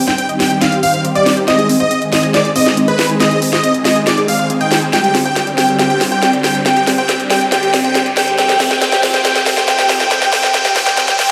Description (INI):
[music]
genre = uplifting trance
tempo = 139 BPM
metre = 4/4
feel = straight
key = unclear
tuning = A4 = 440 Hz
[part]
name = analog pluck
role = arpeggios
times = 0.0-11.2 s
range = C4 to Ab5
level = -22 LUFS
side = equal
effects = chorus, dub echo
[part]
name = riser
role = sound effects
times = 0.3-11.3 s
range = none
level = -27 LUFS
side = equal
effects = none
[part]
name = big supersaw lead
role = melody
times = 0.1-11.3 s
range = B4 to G5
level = -19 LUFS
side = equal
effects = dub echo
[part]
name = dark concert grand piano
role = second line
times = 0.1-11.3 s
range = B4 to G5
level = -23 LUFS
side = equal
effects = dub echo
[part]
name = house drum kit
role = drums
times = 0.1-11.3 s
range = hi-hat, snare drum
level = -19 LUFS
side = equal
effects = overdrive
[part]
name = analog string pad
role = sustained chords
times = 0.3-11.1 s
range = D3 to Ab4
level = -22 LUFS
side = equal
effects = ensemble chorus
[sound]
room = wet digital room reverb, RT60 1.3 s, digital ambience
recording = played on a big sound system in a bare room, large studio reverb, high-pass filter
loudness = -13 LUFS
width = mono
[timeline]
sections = 0.0-11.3 A section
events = build-up 0.0-11.3; drum fill 0.0-11.3; filter sweep on synth pluck 0.0-11.3; filter sweep 0.0-11.3; riser 2.1-11.3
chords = 0.0 Cm; 1.5 Ab; 4.9 Gsus4; 8.4 Fadd9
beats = 0.18 0.61 1.05 | 1.48 1.91 2.34 2.77 | 3.20 3.64 4.07 4.50 | 4.93 5.36 5.79 6.23 | 6.66 7.09 7.52 7.95 | 8.38 8.82 9.25 9.68 | 10.11 10.54 10.97